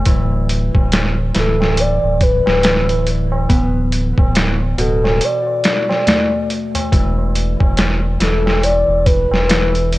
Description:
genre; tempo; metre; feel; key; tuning
trip hop; 70 BPM; 4/4; swing 59% on 16ths; unclear; A4 = 440 Hz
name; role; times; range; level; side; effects
Celtic harp; arpeggios; 0.0-10.0 s; B2 to B3; -22 LUFS; equal; tape echo
round analog bass; bass; 0.0-10.0 s; D1 to E1; -18 LUFS; equal; none
trip hop sampler-style drum kit; drums; 0.1-10.0 s; hi-hat, kick drum, snare drum; -16 LUFS; equal; none
tabla; percussion; 0.1-9.9 s; none; -27 LUFS; right 1 dB; none
pure breathy sine lead; melody; 1.4-9.9 s; A4 to D5; -19 LUFS; left 1 dB; wide subtle chorus, dub echo
room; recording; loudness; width
digital ambience; worn, warbling old tape, cassette tape, warbly pitch drift; -13 LUFS; side -18 dB against mid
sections
0.0-10.0 A section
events
none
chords
0.1 Dsus2; 6.9 E5

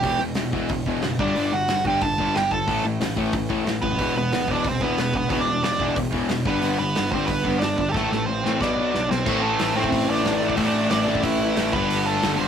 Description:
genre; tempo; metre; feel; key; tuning
punk rock; 182 BPM; 4/4; straight; unclear; A4 = 440 Hz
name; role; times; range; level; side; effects
nasal lead guitar with a parked wah; melody; 0.0-12.5 s; A3 to A5; -24 LUFS; right 3 dB; overdrive
overdriven semi-hollow guitar; riff; 0.0-12.5 s; E2 to B3; -25 LUFS; left 5 dB; none
tight distorted guitar; riff; 0.0-12.5 s; E2 to B3; -28 LUFS; right 4 dB; distortion
fuzz picked electric bass; bass; 0.0-12.5 s; E1 to B1; -31 LUFS; equal; overdrive
loose indie drum kit; drums; 0.0-12.3 s; crash cymbal, hi-hat, kick drum, snare drum; -29 LUFS; equal; none
high-gain distorted guitar; riff; 9.3-12.5 s; G2 to E4; -30 LUFS; equal; none
room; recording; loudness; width
light reverb; rough rehearsal-room recording; -20 LUFS; side -8 dB against mid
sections
0.0-9.3 A section; 9.3-12.5 B section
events
drum fill 8.0-9.3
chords
0.0 Em; 1.2 G5; 2.7 A5; 4.0 E5; 6.5 G; 8.0 Am; 8.6 Bm; 9.3 Am; 11.7 G

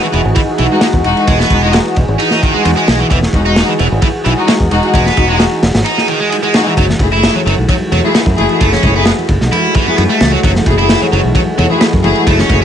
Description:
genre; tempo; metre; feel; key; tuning
breakbeat, breaks; 131 BPM; 4/4; straight; F# dorian; A4 = 438 Hz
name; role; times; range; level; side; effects
lush unison pad; sustained chords; 0.0-12.6 s; E3 to G#4; -18 LUFS; right 1 dB; chorus, sidechain pumping
distorted electric guitar; riff; 0.0-12.6 s; D#3 to E4; -16 LUFS; right 2 dB; overdrive, ping-pong delay
fingered electric bass; bass; 0.1-12.6 s; E1 to F#2; -15 LUFS; equal; none
crunchy breakbeat drum kit; drums; 0.1-12.6 s; kick drum, ride cymbal, snare drum; -14 LUFS; equal; none
rich chamber string section; stabs; 0.7-12.6 s; G#3 to G#4; -16 LUFS; left 3 dB; ping-pong delay
congas; percussion; 6.9-12.6 s; none; -22 LUFS; left 1 dB; none
room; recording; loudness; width
light reverb; vinyl crackle, nothing above 10.8 kHz; -9 LUFS; side -9 dB against mid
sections
0.0-12.6 A section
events
none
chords
0.0 Emaj9; 6.8 F#m9

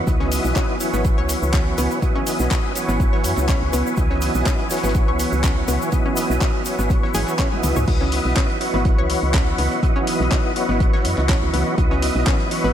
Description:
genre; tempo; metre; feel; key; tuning
deep house; 123 BPM; 4/4; swing 54% on 16ths; C# minor; A4 = 440 Hz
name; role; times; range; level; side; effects
warm analog pad; sustained chords; 0.0-12.7 s; E3 to B5; -28 LUFS; right 1 dB; chorus, vintage 12-bit sampler grit, sidechain pumping
tonewheel organ; stabs; 0.0-12.7 s; E3 to D#4; -23 LUFS; equal; chorus vibrato, slow rotary speaker, sidechain pumping, tape echo
woody FM bass; bass; 0.1-12.7 s; G#1 to F#2; -22 LUFS; equal; sidechain pumping
electronic kick drum; drums; 0.1-12.4 s; none; -20 LUFS; equal; none
warm soul drum kit; drums; 0.1-12.7 s; hi-hat, snare drum; -38 LUFS; right 3 dB; none
egg shaker; percussion; 0.1-7.9 s; none; -33 LUFS; right 2 dB; none
analog pluck; arpeggios; 0.2-12.7 s; B3 to C#5; -28 LUFS; left 2 dB; chorus, cassette tape, sidechain pumping, ping-pong delay
deep house drum kit; drums; 0.3-12.6 s; crash cymbal, handclaps, hi-hat, toms; -28 LUFS; left 1 dB; none
room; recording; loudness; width
light reverb; none; -17 LUFS; side -10 dB against mid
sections
0.0-7.9 A section; 7.9-12.7 B section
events
drum fill 7.5-7.9; drop 7.9-12.7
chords
0.0 C#m11

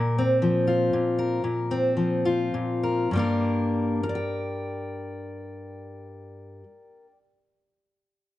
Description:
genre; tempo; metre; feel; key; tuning
folk; 98-122 BPM; 3/4; straight; G minor; A4 = 441 Hz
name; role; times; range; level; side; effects
fingerpicked steel-string acoustic guitar; accompaniment; 0.0-7.2 s; G2 to G5; -24 LUFS; left 1 dB; none
room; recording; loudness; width
light reverb; dark, warm production, nothing above 10.9 kHz; -23 LUFS; side -14 dB against mid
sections
0.0-3.1 A section; 3.1-6.8 B section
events
slowing down 0.0-3.1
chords
0.0 Bbsus2; 3.1 Gm

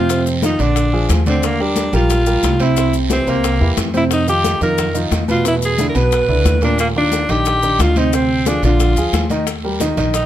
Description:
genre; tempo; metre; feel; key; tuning
Afro-Cuban jazz; 179 BPM; 4/4; straight; unclear; A4 = 440 Hz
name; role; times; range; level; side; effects
bright alto saxophone; melody; 0.0-10.3 s; Bb3 to B4; -18 LUFS; equal; none
warm upright piano; accompaniment; 0.0-10.3 s; Bb2 to Eb5; -19 LUFS; right 2 dB; none
upright bass; bass; 0.0-10.3 s; Bb1 to F2; -19 LUFS; equal; none
bongos; percussion; 0.1-10.3 s; none; -27 LUFS; left 9 dB; none
congas; percussion; 0.1-10.3 s; none; -25 LUFS; left 1 dB; none
guiro; percussion; 0.1-10.3 s; none; -30 LUFS; right 5 dB; none
maracas; percussion; 0.1-10.3 s; none; -29 LUFS; left 8 dB; none
room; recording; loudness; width
light reverb; close, detailed microphones; -13 LUFS; side -12 dB against mid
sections
0.0-9.5 A section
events
none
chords
0.1 F5; 0.8 Bb7; 1.4 Ebmaj7; 2.8 C7; 4.1 Fsus2; 5.5 E5; 6.8 Ebmaj9; 8.1 Dm7b5; 8.8 Bb7; 9.5 Eb

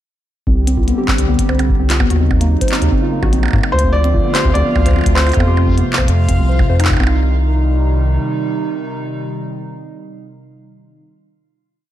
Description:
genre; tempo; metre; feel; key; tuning
IDM; 147 BPM; 4/4; straight; unclear; A4 = 437 Hz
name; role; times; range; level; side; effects
hollow soft pad; sustained chords; 0.5-11.0 s; C3 to G4; -21 LUFS; right 2 dB; chorus
warbly dusty pluck; arpeggios; 0.5-7.2 s; C3 to C5; -21 LUFS; left 2 dB; chorus, digital delay
round analog bass; bass; 0.5-8.2 s; Bb1 to Ab2; -14 LUFS; equal; none
electronic kick drum; drums; 0.5-7.1 s; none; -18 LUFS; equal; studio ambience
glitchy drum kit; drums; 0.7-7.1 s; handclaps, hi-hat, percussion blips; -22 LUFS; right 1 dB; overdrive, studio ambience, ping-pong delay
felt-muted upright piano; melody; 3.7-5.9 s; C5 to D5; -20 LUFS; equal; digital delay
backwards swelling texture; texture; 4.3-7.0 s; F4 to F5; -28 LUFS; left 1 dB; built-in reverb
room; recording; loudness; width
light reverb, digital ambience; dark, warm production; -12 LUFS; side -12 dB against mid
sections
0.5-7.0 groove; 7.0-10.3 final chord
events
none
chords
0.5 Csus2; 2.1 Ebm7; 3.7 Dm; 5.4 F; 7.0 Cm

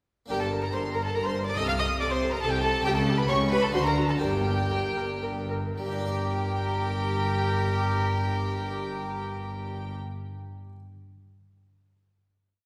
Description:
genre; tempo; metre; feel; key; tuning
classical, baroque-style concerto movement with solo episodes; 105-141 BPM; 3/4; straight; G minor; A4 = 437 Hz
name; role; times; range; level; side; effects
rich chamber violin section; melody; 0.3-10.0 s; G5 to F6; -38 LUFS; equal; none
warm violin; melody; 0.3-10.0 s; G4 to F5; -33 LUFS; equal; none
rich chamber violin section; second line; 0.3-9.9 s; G4 to F6; -37 LUFS; equal; none
dark chamber viola section; accompaniment; 0.3-10.0 s; F#4 to Bb4; -37 LUFS; equal; none
harpsichord; accompaniment; 0.3-10.8 s; G2 to D5; -38 LUFS; equal; none
dark chamber cello section; bass; 0.3-10.0 s; G2 to D3; -34 LUFS; equal; none
rich chamber double bass section; bass; 0.3-9.9 s; G1 to D2; -35 LUFS; equal; none
room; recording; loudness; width
wet concert hall reverb, RT60 2.0 s; recorded in a church or concert hall; -27 LUFS; mono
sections
0.3-5.8 ritornello; 5.8-9.2 final chord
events
slowing down 2.2-5.8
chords
0.3 Gm; 1.6 Adim/C; 2.9 A7/C#; 3.7 D; 4.2 Gm

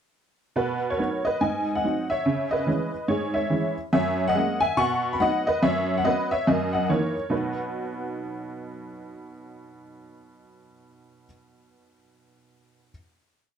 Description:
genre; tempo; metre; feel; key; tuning
jazz, stride piano; 142 BPM; 4/4; swing 61% on 8ths; B major; A4 = 439 Hz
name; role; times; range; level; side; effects
honky-tonk upright piano; solo; 0.6-12.9 s; F#2 to C#6; -23 LUFS; equal; none
room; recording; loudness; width
moderate club reverb, RT60 0.7 s; none; -22 LUFS; side -8 dB against mid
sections
0.6-7.3 A section; 7.3-10.7 final chord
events
none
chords
0.6 B; 1.4 G#7; 2.2 C#m; 3.9 F#9; 4.8 B; 5.6 F#sus4; 6.5 F#6; 7.3 B

